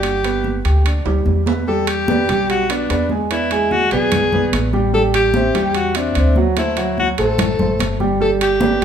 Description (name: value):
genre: Afro-Cuban jazz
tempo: 147 BPM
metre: 4/4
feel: straight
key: E minor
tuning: A4 = 440 Hz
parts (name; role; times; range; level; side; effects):
- breathy alto saxophone; melody; 0.0-8.8 s; D4 to A4; -19 LUFS; left 2 dB; none
- warm grand piano; accompaniment; 0.0-8.8 s; F#3 to G#5; -20 LUFS; right 2 dB; none
- upright bass; bass; 0.0-8.8 s; G1 to E2; -21 LUFS; equal; none
- congas; percussion; 0.0-8.8 s; none; -24 LUFS; left 1 dB; none
- timbales; percussion; 0.0-8.8 s; none; -26 LUFS; right 6 dB; none
room: moderate large studio reverb, RT60 1.2 s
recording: band playing live in one room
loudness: -14 LUFS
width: side -8 dB against mid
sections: 0.0-1.7 A section; 1.7-8.8 B section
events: drum fill 1.1-1.7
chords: 0.0 G; 1.7 Em7; 3.3 E7; 4.9 Am7; 6.6 D9; 8.2 G